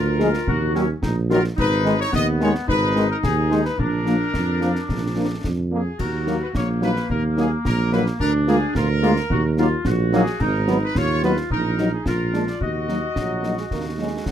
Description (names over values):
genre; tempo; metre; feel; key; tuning
military-style march for wind band; 109 BPM; 2/4; straight; Eb minor; A4 = 441 Hz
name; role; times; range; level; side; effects
clear trumpet section; melody; 0.0-14.2 s; Ab4 to Eb5; -27 LUFS; left 2 dB; none
mellow woodwind section; second line; 0.0-14.3 s; Bb3 to Gb4; -26 LUFS; left 1 dB; none
mellow tuba; bass; 0.0-14.3 s; Ab1 to F2; -23 LUFS; right 3 dB; none
dark French horn section; accompaniment; 0.2-14.1 s; F3 to Ab4; -25 LUFS; left 4 dB; none
warm trombone section; sustained chords; 0.2-14.1 s; Eb3 to Eb4; -23 LUFS; right 1 dB; none
concert snare drum, concert bass drum and clash cymbals; drums; 0.2-14.3 s; none; -28 LUFS; left 1 dB; none
clear euphonium; second line; 13.2-14.3 s; Gb3 to Bb3; -31 LUFS; right 4 dB; none
room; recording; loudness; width
little or no reverb; close, detailed microphones; -18 LUFS; side -10 dB against mid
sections
0.0-14.3 A section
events
none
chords
0.5 Ebm; 1.6 Abm; 3.8 Bb; 6.0 Ebm; 8.2 Bb7/D; 9.3 Ebm; 10.4 Abm7; 11.5 Ebm/Bb; 12.1 Bb7; 12.6 Ebm